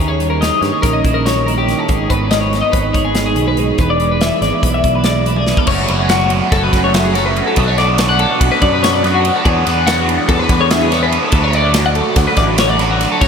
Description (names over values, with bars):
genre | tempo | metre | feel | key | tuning
math rock and midwest emo | 287 BPM (eighths) | 9/8 | straight | D lydian | A4 = 440 Hz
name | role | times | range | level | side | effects
twelve-string electric guitar | accompaniment | 0.0-5.7 s | Eb2 to G#4 | -21 LUFS | right 7 dB | none
twelve-string electric guitar | arpeggios | 0.0-13.3 s | F#4 to F#5 | -16 LUFS | left 3 dB | wide subtle chorus, analog delay
picked electric bass | bass | 0.0-13.3 s | E1 to G2 | -18 LUFS | equal | none
modern studio drum kit | drums | 0.2-13.3 s | crash cymbal, hi-hat, kick drum, ride cymbal, snare drum, toms | -19 LUFS | equal | none
overdriven electric guitar | riff | 5.7-13.3 s | B2 to G#4 | -17 LUFS | right 3 dB | phaser
room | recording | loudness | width
wet huge ambient reverb, RT60 7.5 s | dreamy mix soaked in reverb | -12 LUFS | side -6 dB against mid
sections
0.0-5.7 A section; 5.7-13.3 B section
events
drum fill 5.4-5.7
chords
0.0 Eb7b9; 1.9 G#m7; 3.8 E7; 5.7 F#madd11; 7.6 Bm7; 9.4 E7sus4; 11.3 D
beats
0.20 0.41 0.62 0.83 1.04 1.26 1.47 1.68 | 1.89 2.10 2.31 2.52 2.73 2.95 3.16 3.37 3.58 | 3.79 4.00 4.21 4.42 4.63 4.84 5.05 5.26 5.47 | 5.68 5.89 6.10 6.31 6.52 6.73 6.94 7.15 7.36 | 7.57 7.78 7.99 8.20 8.40 8.61 8.82 9.03 9.24 | 9.45 9.66 9.87 10.08 10.29 10.49 10.70 10.91 11.12 | 11.33 11.54 11.75 11.96 12.17 12.38 12.59 12.79 13.00 | 13.21